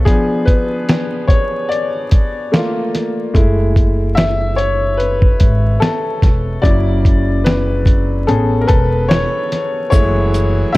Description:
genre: lo-fi hip hop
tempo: 73 BPM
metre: 4/4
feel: swing 56% on 16ths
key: unclear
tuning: A4 = 440 Hz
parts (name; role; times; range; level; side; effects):
- bright upright piano; accompaniment; 0.0-10.8 s; C#3 to E5; -17 LUFS; left 1 dB; cassette tape, low-pass filter
- lo-fi sampler-style drum kit; drums; 0.1-10.8 s; hi-hat, kick drum, snare drum; -14 LUFS; equal; vintage 12-bit sampler grit
- upright bass; bass; 3.4-10.8 s; E1 to A1; -17 LUFS; equal; none
- pipe organ, full organ; sustained chords; 9.9-10.8 s; E3 to G#4; -23 LUFS; equal; low-pass filter
- tube shaker; percussion; 9.9-10.8 s; none; -36 LUFS; right 8 dB; none
room: light reverb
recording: dark, warm production, vinyl crackle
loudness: -12 LUFS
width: side -19 dB against mid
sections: 0.0-9.9 A section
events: upright piano solo 0.0-9.9; break 0.1-3.3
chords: 0.1 Fdim7; 2.5 Bbmaj7/A; 3.3 F#m7; 6.6 Dmaj7/F#; 8.3 Amaj9; 9.9 F#m9

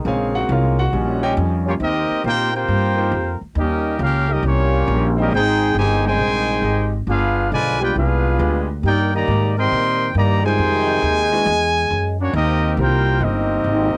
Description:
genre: jazz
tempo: 137 BPM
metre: 4/4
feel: swing 67% on 8ths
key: Eb major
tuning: A4 = 440 Hz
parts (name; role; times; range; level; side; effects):
- clear trombone section; sustained chords; 0.0-1.8 s; D#3 to Db4; -30 LUFS; equal; none
- upright bass; bass; 0.0-14.0 s; G1 to Bb2; -22 LUFS; equal; none
- clear grand piano; accompaniment; 0.1-13.5 s; Db3 to Ab5; -26 LUFS; equal; none
- clear trumpet section; melody; 1.7-14.0 s; Bb3 to C6; -23 LUFS; equal; cassette tape
- dark trombone section; second line; 1.7-14.0 s; C3 to Ab4; -24 LUFS; equal; none
room: moderate booth ambience, RT60 0.2 s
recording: home recording on cassette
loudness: -18 LUFS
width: mono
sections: 0.0-1.8 A section; 1.8-14.0 B section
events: grand piano solo 0.0-1.8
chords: 0.1 Bbm7; 0.9 Eb9; 1.8 Eb69; 3.6 Eb13; 5.3 Abmaj7; 7.1 G7b9; 8.8 Cm9; 10.6 Fm9; 11.5 Eadd9; 12.3 Eb69

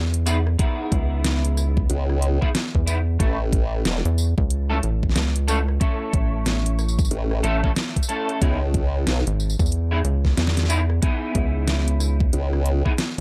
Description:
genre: glitch hop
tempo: 92 BPM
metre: 4/4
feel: swing 61% on 16ths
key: C# minor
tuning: A4 = 442 Hz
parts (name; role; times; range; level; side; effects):
- rubbery square bass; bass; 0.0-13.2 s; G#1 to E2; -23 LUFS; equal; none
- pop drum kit; drums; 0.1-13.2 s; hi-hat, rim click, snare drum, tambourine; -29 LUFS; equal; overdrive
- clean electric guitar; stabs; 0.3-12.9 s; A3 to B4; -30 LUFS; equal; ensemble chorus, sidechain pumping, dub echo
- electronic kick drum; drums; 0.6-13.2 s; none; -24 LUFS; equal; overdrive
- formant-sweep wobble bass; bass; 1.9-12.8 s; E1 to C#2; -24 LUFS; equal; chorus, overdrive
room: light reverb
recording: dark, warm production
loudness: -22 LUFS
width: mono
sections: 0.0-13.2 A section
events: none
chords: 0.0 C#m7; 3.2 A; 8.4 C#m7

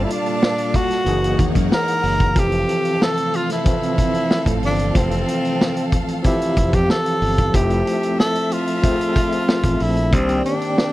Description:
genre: lush 1970s-style soul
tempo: 93 BPM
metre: 4/4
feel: straight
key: F major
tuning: A4 = 440 Hz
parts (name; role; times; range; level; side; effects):
- breathy tenor saxophone; melody; 0.0-10.9 s; C4 to Bb4; -21 LUFS; equal; slapback echo
- warm studio string section; second line; 0.0-10.9 s; C4 to A5; -29 LUFS; right 1 dB; none
- overdriven tine electric piano; accompaniment; 0.0-10.9 s; Eb3 to E5; -23 LUFS; left 1 dB; fast tremolo
- phased string machine; sustained chords; 0.0-7.5 s; Bb2 to F5; -30 LUFS; equal; ensemble chorus, phaser
- modern bright fingered electric bass; bass; 0.0-10.4 s; F1 to Gb2; -21 LUFS; equal; none
- vintage drum kit; drums; 0.1-10.9 s; hi-hat, kick drum, snare drum; -20 LUFS; equal; none
room: little or no reverb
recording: dry, close 1970s-style studio recording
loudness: -16 LUFS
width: side -16 dB against mid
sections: 0.0-7.5 A section; 7.5-10.9 A section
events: none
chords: 0.0 Gm9; 1.1 Gb13; 2.4 Fmaj7; 10.1 Cm9

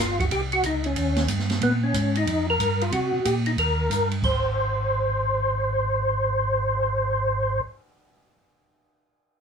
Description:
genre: soul jazz organ trio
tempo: 184 BPM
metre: 4/4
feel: swing 64% on 8ths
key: Ab major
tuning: A4 = 441 Hz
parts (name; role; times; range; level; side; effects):
- percussive tonewheel organ; melody; 0.0-7.6 s; Cb4 to C5; -24 LUFS; equal; slow rotary speaker, chorus vibrato
- mellow tonewheel organ; bass; 0.0-7.6 s; G1 to C3; -26 LUFS; right 1 dB; chorus vibrato, slow rotary speaker
- open jazz drum kit; drums; 0.0-6.8 s; crash cymbal, cymbal swell, hi-hat, kick drum, ride cymbal, snare drum; -30 LUFS; right 3 dB; none
room: light reverb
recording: none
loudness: -21 LUFS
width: side -6 dB against mid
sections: 0.0-4.2 A section; 4.2-6.8 B section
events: none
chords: 0.3 Cm; 1.0 Eb7; 1.6 Bbm7; 2.3 Fsus24; 2.9 Ebm6 (rootless); 3.6 Eb; 4.2 Ab

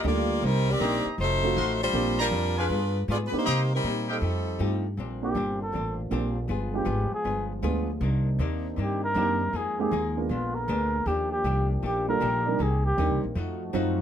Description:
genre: jazz, big band swing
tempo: 158 BPM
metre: 4/4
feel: swing 66% on 8ths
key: Bb major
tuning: A4 = 444 Hz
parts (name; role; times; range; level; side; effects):
- warm saxophone section; melody; 0.0-4.8 s; G3 to D5; -27 LUFS; left 1 dB; none
- archtop guitar, miked and amplified; accompaniment; 0.0-14.0 s; Bb2 to Ab4; -36 LUFS; left 7 dB; none
- dark concert grand piano; accompaniment; 0.0-14.0 s; Gb3 to C5; -30 LUFS; right 4 dB; none
- upright bass; bass; 0.0-14.0 s; F1 to C3; -28 LUFS; equal; none
- clear trumpet section; stabs; 0.8-4.2 s; Gb4 to C6; -30 LUFS; left 1 dB; none
- warm trombone section; sustained chords; 5.0-14.0 s; D3 to Ab4; -37 LUFS; left 1 dB; none
- trumpet with cup mute; melody; 5.2-13.2 s; F4 to Bb4; -28 LUFS; equal; none
room: light reverb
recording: none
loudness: -24 LUFS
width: side -9 dB against mid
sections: 0.0-5.0 A section; 5.0-14.0 B section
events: muted trumpet solo 5.0-14.0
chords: 0.4 Cm7; 1.2 F7b9; 1.9 Bb69; 2.7 G7b9; 3.5 Cm7; 4.2 F9; 5.0 Bb69; 6.5 G7b9; 8.0 Cm9; 9.5 Fm11; 10.3 Bb7b9; 11.1 Ebmaj9#11; 12.6 Cm7; 13.4 F7b9

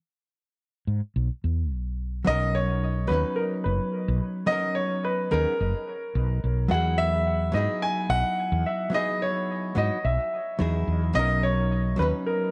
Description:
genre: sunset chillout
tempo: 108 BPM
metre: 4/4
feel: swing 54% on 16ths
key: B major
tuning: A4 = 440 Hz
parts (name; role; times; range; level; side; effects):
- woody fretless electric bass; bass; 0.9-12.1 s; F#1 to G#2; -28 LUFS; equal; none
- hollow-body jazz guitar; accompaniment; 2.2-12.5 s; F#3 to B4; -32 LUFS; equal; analog delay
- warm grand piano; melody; 2.3-12.5 s; A#4 to G#5; -29 LUFS; equal; dub echo
room: moderate echo chamber reverb, RT60 1.5 s, small room ambience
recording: echo-heavy mix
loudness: -26 LUFS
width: mono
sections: 0.0-12.5 A section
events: none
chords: 0.0 E5; 2.3 Bmaj7; 6.7 Emaj9; 11.2 Bmaj7

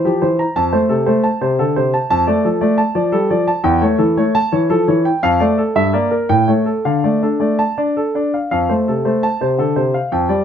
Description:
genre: classical, baroque-style suite movement for grand piano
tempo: 107-120 BPM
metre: 3/4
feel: rubato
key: D minor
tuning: A4 = 440 Hz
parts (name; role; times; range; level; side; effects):
- clear concert grand piano; solo; 0.0-10.4 s; E2 to Bb5; -14 LUFS; equal; none
room: moderate stone room reverb, RT60 0.9 s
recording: close, detailed microphones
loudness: -14 LUFS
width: side -8 dB against mid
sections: 0.0-8.5 A section; 8.5-10.4 A section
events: none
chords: 0.0 C7; 0.6 F (rootless); 2.1 Dm/F; 3.6 A7/E; 5.2 Dm/F; 5.8 Em7b5/G; 6.3 A7; 6.8 Dm; 8.5 F

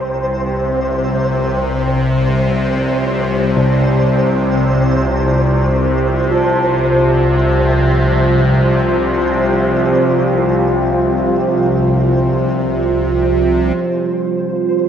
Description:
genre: dark ambient drone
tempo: free time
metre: none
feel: none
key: unclear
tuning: A4 = 442 Hz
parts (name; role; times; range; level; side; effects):
- deep dark ambient pad; sustained chords; 0.0-14.9 s; F4 to D5; -18 LUFS; right 2 dB; chorus, built-in reverb
- bowed-like drone; drone; 0.0-14.9 s; C2 to C3; -15 LUFS; left 1 dB; built-in reverb, phaser
- flickering grainy texture; texture; 0.0-14.9 s; C5; -24 LUFS; right 2 dB; built-in reverb, lush chorus
- bronze singing bowl; arpeggios; 3.6-13.1 s; C3 to F4; -20 LUFS; equal; tape echo
room: wet plate reverb, RT60 2.8 s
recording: dreamy mix soaked in reverb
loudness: -12 LUFS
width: side -8 dB against mid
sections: 0.0-13.8 A section; 13.8-14.9 B section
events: fade-in on ambient pad 0.0-13.8; fade-out on synth texture 0.0-13.8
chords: 0.0 Csus2; 13.8 C5

